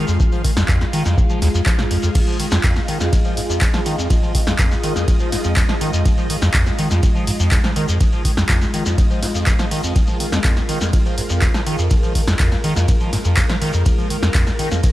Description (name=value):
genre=acid house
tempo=123 BPM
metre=4/4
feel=straight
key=F minor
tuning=A4 = 439 Hz
part: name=string machine, full ensemble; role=sustained chords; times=0.0-14.9 s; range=Ab3 to F5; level=-25 LUFS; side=equal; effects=phaser, ensemble chorus, sidechain pumping
part: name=liquid acid bass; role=riff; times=0.0-14.9 s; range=Eb2 to F3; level=-20 LUFS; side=equal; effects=phaser, lush chorus, sidechain pumping
part: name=shekere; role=percussion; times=0.1-14.9 s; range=none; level=-31 LUFS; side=left 2 dB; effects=none
part: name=electronic kick drum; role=drums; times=0.2-14.9 s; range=none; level=-17 LUFS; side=equal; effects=none
part: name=punchy analog drum machine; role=drums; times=0.4-14.9 s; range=crash cymbal, handclaps, hi-hat, ride cymbal, snare drum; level=-24 LUFS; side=equal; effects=overdrive
room=little or no reverb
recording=none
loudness=-15 LUFS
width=side -15 dB against mid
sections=0.0-14.9 A section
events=none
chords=0.0 Fm7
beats=| 0.20 0.69 1.18 1.67 | 2.15 2.64 3.13 3.62 | 4.10 4.59 5.08 5.57 | 6.05 6.54 7.03 7.52 | 8.01 8.49 8.98 9.47 | 9.96 10.45 10.93 11.42 | 11.91 12.40 12.88 13.37 | 13.86 14.35 14.84